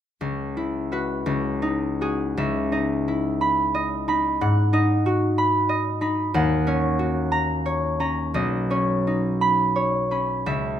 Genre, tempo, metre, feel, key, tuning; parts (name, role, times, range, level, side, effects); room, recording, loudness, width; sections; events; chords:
classical, solo harp piece; 50-64 BPM (dotted quarters); 6/8; rubato; C# dorian; A4 = 439 Hz
concert harp; solo; 0.2-10.8 s; B1 to B5; -20 LUFS; equal
light reverb; minimal, uncompressed stereo recording; -21 LUFS; side -10 dB against mid
0.2-2.4 A section; 2.4-10.8 B section
0.2 C#m7; 1.3 D#m7/C#; 2.4 C#m9; 4.4 G#m7; 6.4 D#m7; 8.3 Badd9